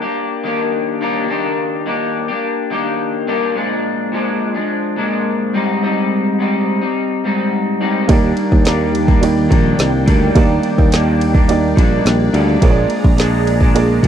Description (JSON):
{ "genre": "indie pop, bedroom pop", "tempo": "106 BPM", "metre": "4/4", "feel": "straight", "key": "Eb major", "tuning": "A4 = 440 Hz", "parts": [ { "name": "electric guitar through a small old amp", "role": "accompaniment", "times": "0.0-14.1 s", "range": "Ab2 to G4", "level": "-17 LUFS", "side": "left 2 dB", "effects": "analog chorus, vibrato effect" }, { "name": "warm upright piano", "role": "accompaniment", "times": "8.1-14.1 s", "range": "Bb3 to D5", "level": "-20 LUFS", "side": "right 7 dB", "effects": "none" }, { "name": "phased analog pad", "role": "sustained chords", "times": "8.4-14.1 s", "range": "Eb3 to Bb5", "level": "-23 LUFS", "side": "right 3 dB", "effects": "phaser, chorus" }, { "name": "picked electric bass", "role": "bass", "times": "8.1-14.1 s", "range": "F1 to Eb2", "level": "-16 LUFS", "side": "equal", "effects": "none" }, { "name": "deep house drum kit", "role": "drums", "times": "8.1-14.1 s", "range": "kick drum, ride cymbal, snare drum", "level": "-13 LUFS", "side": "equal", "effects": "none" } ], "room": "little or no reverb", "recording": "dry, close 1970s-style studio recording", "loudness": "-13 LUFS", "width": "side -9 dB against mid", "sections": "0.0-14.1 A section", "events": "none", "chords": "0.0 Ebmaj7; 3.6 Bb7; 5.5 Abmaj7; 8.1 Ebmaj7; 12.6 Bb7" }